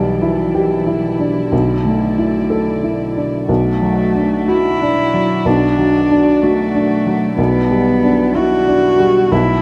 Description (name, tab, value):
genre	neoclassical piano and strings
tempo	62 BPM (dotted quarters)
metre	6/8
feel	rubato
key	B minor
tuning	A4 = 440 Hz
part	warm cello	second line	0.0-9.6 s	D3 to F#4	-19 LUFS	equal	none
part	warm upright piano	accompaniment	0.0-9.6 s	B1 to A4	-17 LUFS	equal	none
part	warm chamber string section	sustained chords	0.0-9.6 s	F#3 to D5	-30 LUFS	equal	none
room	moderate lush hall reverb, RT60 2.7 s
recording	rough home demo mix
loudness	-15 LUFS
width	mono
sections	0.0-3.5 A section; 3.5-9.6 B section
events	none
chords	0.0 G6/B; 1.5 Asus4/B; 3.5 Bm7; 7.4 G6/B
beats	0.54 | 1.52 2.50 | 3.49 4.48 | 5.46 6.42 | 7.38 8.36 | 9.31